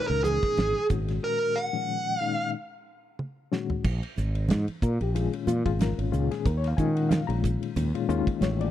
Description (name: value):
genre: electric jazz fusion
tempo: 92 BPM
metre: 4/4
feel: swing 55% on 16ths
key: unclear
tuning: A4 = 440 Hz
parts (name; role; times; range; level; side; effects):
- dark smooth lead guitar; melody; 0.0-2.5 s; G#4 to F#5; -26 LUFS; right 1 dB; overdrive
- reed electric piano; accompaniment; 0.0-8.7 s; A#2 to A#5; -30 LUFS; left 8 dB; overdrive, fast tremolo
- fretless electric bass; bass; 0.1-8.7 s; G#1 to D#3; -26 LUFS; right 1 dB; none
- damped 70s drum kit; drums; 0.2-8.7 s; crash cymbal, hi-hat, kick drum, ride cymbal, snare drum, toms; -30 LUFS; right 1 dB; none
- congas; percussion; 0.2-8.6 s; none; -33 LUFS; right 4 dB; none
room: small room ambience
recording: dry, close 1970s-style studio recording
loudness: -24 LUFS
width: side -12 dB against mid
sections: 0.0-3.8 A section; 3.8-8.7 B section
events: break 1.2-3.8; drum fill 3.2-3.8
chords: 0.0 A#m7; 0.9 D#m7/G#; 2.5 G#sus2; 3.8 A#m7; 6.5 D#9sus4